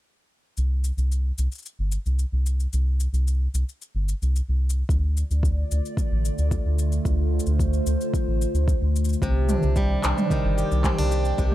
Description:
folktronica; 111 BPM; 4/4; straight; C dorian; A4 = 442 Hz
round analog bass; bass; 0.6-11.5 s; G1 to D2; -22 LUFS; equal
organic electronic drum kit; drums; 0.6-11.5 s; handclaps, shaker, toms; -30 LUFS; equal; overdrive
warbly tape-like pad; sustained chords; 5.5-11.5 s; D3 to G5; -29 LUFS; right 1 dB; chorus, built-in reverb
electronic kick drum; drums; 4.9-11.5 s; -25 LUFS; equal; overdrive
picked plugged-in swing-style acoustic guitar; arpeggios; 9.2-11.5 s; C3 to G4; -26 LUFS; equal; digital delay
little or no reverb; -21 LUFS; side -14 dB against mid
0.6-9.2 A section; 9.2-11.5 B section
0.6 C5; 4.9 Dm; 9.2 Cmadd9
| 0.58 1.12 1.66 2.20 | 2.74 3.28 3.82 4.36 | 4.90 5.44 5.98 6.52 | 7.06 7.61 8.14 8.69 | 9.23 9.77 10.31 10.85 | 11.39

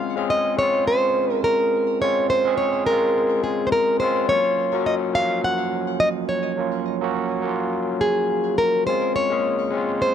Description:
chillout; 105 BPM; 4/4; straight; A4 = 438 Hz
nylon-string guitar; melody; 0.0-10.1 s; Ab4 to Gb5; -20 LUFS; equal; digital delay
overdriven tine electric piano; accompaniment; 0.0-10.1 s; F3 to Ab4; -24 LUFS; moving between left 8 dB and right 9 dB; auto-pan, digital delay
moderate plate reverb, RT60 3.4 s; -19 LUFS; side -8 dB against mid
0.0-10.1 A section
0.0 Bbm7; 4.3 Gbmaj7/F; 8.9 Bbm7
0.31 0.88 1.45 | 2.02 2.60 3.17 3.74 | 4.31 4.88 5.45 6.02 | 6.60 7.17 7.74 8.31 | 8.88 9.45 10.02

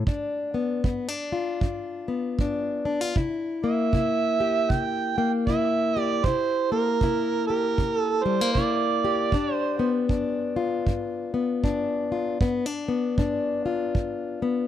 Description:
acoustic country blues, solo or duo; 78 BPM; 4/4; swing 60% on 8ths; A4 = 439 Hz
fingerpicked plugged-in acoustic archtop guitar; accompaniment; 0.0-14.7 s; G2 to G4; -25 LUFS; left 4 dB
kick drum; drums; 0.1-14.2 s; -25 LUFS; right 1 dB
overdriven harmonica; melody; 3.6-10.0 s; Bb4 to G5; -25 LUFS; right 7 dB; slapback echo
small room ambience; dry, close 1970s-style studio recording; -23 LUFS; side -11 dB against mid
0.0-14.7 A section
0.1 G7; 3.2 C7; 9.3 G7
| 0.07 0.84 1.61 2.38 | 3.15 3.92 4.70 5.47 | 6.24 7.01 7.78 8.55 | 9.32 10.09 10.86 11.63 | 12.40 13.17 13.95

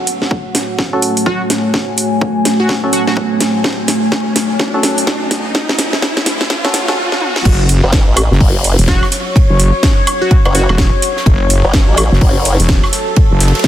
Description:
bass house; 126 BPM; 4/4; swing 61% on 16ths; F# minor; A4 = 439 Hz
deep dark ambient pad; sustained chords; 0.2-6.9 s; A3 to C#5; -19 LUFS; equal; chorus, built-in reverb, sidechain pumping
riser; sound effects; 0.0-7.5 s; -23 LUFS; equal
deep dark ambient pad; texture; 0.0-13.7 s; F#4 to G#5; -22 LUFS; left 2 dB; chorus, built-in reverb, sidechain pumping
house drum kit; drums; 0.1-13.7 s; crash cymbal, hi-hat, snare drum, toms, woodblock; -16 LUFS; equal; small room ambience
electronic kick drum; drums; 0.3-13.7 s; -12 LUFS; equal; high-pass filter on kick, small room ambience
percussive organ stab; stabs; 0.9-7.0 s; C#4 to A4; -22 LUFS; right 1 dB; lush chorus, sidechain pumping, tape echo
plucky unison lead; melody; 1.3-3.1, 8.9-10.8 s; F#4; -20 LUFS; right 1 dB; tape echo
wobble bass; bass; 7.5-13.5 s; E1 to F#1; -12 LUFS; equal; chorus, tube saturation, sidechain pumping
tight funk drum kit; drums; 7.5-13.7 s; hi-hat, ride cymbal, snare drum; -25 LUFS; right 1 dB; high-pass filter on cymbals, small room ambience, high-pass filter on hats, soft clipping on snare, high-pass filter on snare, high-pass filter on room
formant-sweep wobble bass; bass; 7.8-12.6 s; F#1 to A1; -13 LUFS; equal; chorus, sidechain pumping
light reverb, digital ambience; dense, heavily limited modern master, high-pass filter; -10 LUFS; side -12 dB against mid
0.0-7.5 A section; 7.5-13.7 B section
build-up 0.0-7.5; drum fill 0.0-7.0, 7.1-7.5; riser 0.0-7.5; drop 7.5-13.7
0.0 F#m
0.31 0.79 1.26 | 1.74 2.21 2.69 3.17 | 3.64 4.12 4.59 5.07 | 5.55 6.02 6.50 6.98 | 7.45 7.93 8.40 8.88 | 9.36 9.83 10.31 10.79 | 11.26 11.74 12.21 12.69 | 13.17 13.64

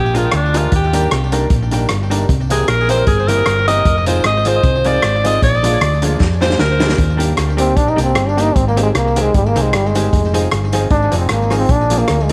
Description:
ska; 153 BPM; 4/4; swing 54% on 8ths; Eb major; A4 = 441 Hz
edgy alto saxophone; melody; 0.0-7.0 s; D4 to Eb5; -20 LUFS; equal; tape echo
hollow-body short-scale fingered electric bass; bass; 0.0-12.3 s; F1 to F2; -20 LUFS; equal
hollow-body jazz guitar; accompaniment; 0.1-12.3 s; Eb3 to Ab4; -27 LUFS; equal; tape echo
dark upright piano; stabs; 0.1-12.3 s; Bb3 to Bb4; -25 LUFS; equal
vintage drum kit; drums; 0.1-12.3 s; hi-hat, kick drum, rim click, snare drum; -21 LUFS; equal
tambourine; percussion; 0.2-12.3 s; -41 LUFS; equal
clear trombone; melody; 7.6-12.3 s; G3 to Eb4; -20 LUFS; equal
light reverb, small room reverb; -15 LUFS; mono
0.0-7.0 A section; 7.0-12.3 A section
alto saxophone solo 0.0-7.0; drum fill 6.2-7.0; trombone solo 7.0-12.3
0.0 Bb7; 0.7 Ebmaj7; 2.3 C7; 3.9 Fm7; 5.4 Bb7; 7.0 Ebmaj7; 8.6 Abmaj7; 10.1 Fm7; 11.7 Bb7
0.33 | 0.72 1.11 1.51 1.90 | 2.29 2.68 3.07 3.46 | 3.86 4.25 4.64 5.03 | 5.42 5.81 6.21 6.60 | 6.99 7.38 7.77 8.16 | 8.56 8.95 9.34 9.73 | 10.13 10.52 10.91 11.30 | 11.70 12.09

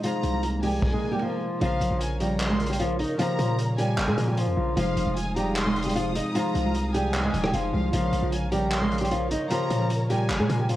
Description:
hip hop, trap; 152 BPM; 4/4; half-time; Bb dorian; A4 = 440 Hz
flamenco guitar; melody; 0.0-10.8 s; F3 to Eb5; -27 LUFS; equal
warm studio violin section; second line; 0.0-10.7 s; F5 to C6; -35 LUFS; equal; tape echo
concert harp; accompaniment; 0.0-10.8 s; C3 to Bb4; -30 LUFS; equal
vintage drum kit; drums; 0.0-10.8 s; crash cymbal, handclaps, hi-hat, kick drum, rim click; -32 LUFS; equal
swell; sound effects; 0.5-1.6 s; -35 LUFS; right 4 dB
distorted 808-style bass; bass; 0.2-10.8 s; Eb1 to Bb2; -28 LUFS; equal; distortion
warm studio string section; sustained chords; 1.6-10.8 s; Ab3 to Eb6; -38 LUFS; left 1 dB
small room ambience; worn, warbling old tape, cassette tape, warbly pitch drift; -23 LUFS; side -14 dB against mid
0.0-1.6 A section; 1.6-10.8 B section
swell 0.5-1.6
0.0 Fm7; 1.6 Bbm; 4.8 Fm7; 7.9 Bbm
| 0.03 0.43 0.82 1.22 | 1.61 2.01 2.40 2.80 | 3.19 3.59 3.98 4.38 | 4.77 5.17 5.56 5.96 | 6.35 6.75 7.14 7.53 | 7.93 8.32 8.72 9.11 | 9.51 9.90 10.30 10.69

